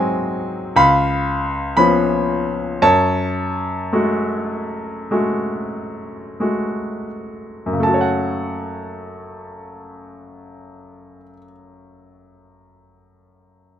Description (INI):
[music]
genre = classical, lyrical solo piano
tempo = 40-62 BPM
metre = 4/4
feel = rubato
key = F# minor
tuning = A4 = 439 Hz
[part]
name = bright grand piano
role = solo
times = 0.0-13.8 s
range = C#2 to B5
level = -18 LUFS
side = equal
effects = none
[sound]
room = little or no reverb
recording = close, detailed microphones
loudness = -17 LUFS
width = side -10 dB against mid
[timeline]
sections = 0.0-7.8 A section; 7.8-13.6 B section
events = slowing down 0.0-7.8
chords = 0.0 G#7; 0.8 C#7; 2.8 F#madd9; 7.8 F#m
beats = 0.76 1.77 | 2.82 3.92 5.10 6.40 | 7.83 9.29 10.71 12.14